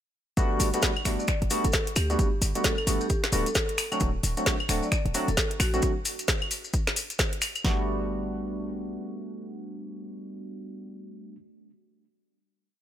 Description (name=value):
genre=UK garage, two-step garage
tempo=132 BPM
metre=4/4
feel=swing 61% on 16ths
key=G major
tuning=A4 = 442 Hz
part: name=barky tine electric piano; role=stabs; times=0.4-11.3 s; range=F#3 to F#4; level=-31 LUFS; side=equal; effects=overdrive, lush chorus, digital delay
part: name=short 808-style bass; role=bass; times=0.4-9.0 s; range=D1 to D2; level=-29 LUFS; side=equal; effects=tube saturation, sidechain pumping
part: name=garage drum kit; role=drums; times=0.4-7.6 s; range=claves, finger snaps, hi-hat, snare drum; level=-28 LUFS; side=equal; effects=none
part: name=punchy analog drum machine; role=drums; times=0.4-7.8 s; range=kick drum, snare drum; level=-28 LUFS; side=equal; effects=none
part: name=maracas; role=percussion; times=0.4-7.6 s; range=none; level=-34 LUFS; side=left 4 dB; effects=none
part: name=vibraphone with medium mallets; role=melody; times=1.2-5.8 s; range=F#4 to D5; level=-34 LUFS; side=equal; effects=digital delay
room=little or no reverb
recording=none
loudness=-24 LUFS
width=side -11 dB against mid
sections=0.4-7.6 drop; 7.6-11.3 final chord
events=drop 0.4-7.6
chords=0.4 Gmaj9; 3.8 D7; 7.6 Gmaj9